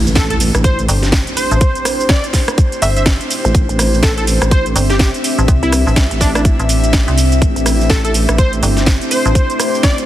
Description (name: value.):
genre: bass house.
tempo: 124 BPM.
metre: 4/4.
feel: swing 60% on 16ths.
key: A minor.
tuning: A4 = 439 Hz.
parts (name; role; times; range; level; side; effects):
deep dark ambient pad; sustained chords; 0.9-10.1 s; A3 to E5; -22 LUFS; equal; chorus, built-in reverb, sidechain pumping.
vowel-sweep wobble bass; bass; 0.0-8.6 s; A1 to C2; -16 LUFS; equal; chorus, sidechain pumping.
impact; sound effects; 0.0-1.6 s; none; -25 LUFS; equal; none.
airy breathy pad; texture; 0.5-10.1 s; D4 to E5; -23 LUFS; equal; chorus, sidechain pumping.
house drum kit; drums; 0.1-10.1 s; hi-hat, rim click, shaker, snare drum; -18 LUFS; right 1 dB; none.
plucky unison lead; melody; 0.2-10.0 s; D4 to E5; -20 LUFS; equal; digital delay.
electronic kick drum; drums; 0.2-10.0 s; none; -13 LUFS; equal; none.
metallic FM bass; bass; 0.9-9.3 s; G1 to C2; -14 LUFS; equal; tube saturation, sidechain pumping.
room: light reverb, digital ambience.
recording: heavily compressed radio sound, multiband compression.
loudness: -11 LUFS.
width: side -13 dB against mid.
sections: 0.0-10.1 A section.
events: impact 0.0-1.6.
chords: 0.0 Am.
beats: 0.16 0.64 1.13 | 1.61 2.10 2.58 3.06 | 3.55 4.03 4.51 5.00 | 5.48 5.97 6.45 6.93 | 7.42 7.90 8.38 8.87 | 9.35 9.84.